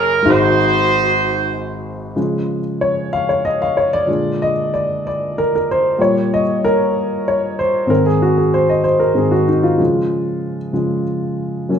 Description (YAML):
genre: gospel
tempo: 63 BPM (dotted quarters)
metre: 6/8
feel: straight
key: Db major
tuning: A4 = 440 Hz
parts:
  - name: warm horn section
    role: melody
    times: 0.0-1.9 s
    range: Eb4 to C5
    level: -15 LUFS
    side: right 3 dB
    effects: none
  - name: warm upright piano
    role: accompaniment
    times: 0.0-11.8 s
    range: Gb1 to F5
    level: -15 LUFS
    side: left 1 dB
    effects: none
room: moderate large studio reverb, RT60 1.1 s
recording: band playing live in one room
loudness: -14 LUFS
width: side -8 dB against mid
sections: 0.0-2.2 A section; 2.2-11.8 B section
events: upright piano solo 2.2-11.8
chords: 0.3 Ab7; 2.2 Db; 4.1 Bb7; 6.0 Bbm69; 7.9 Ab; 9.8 Db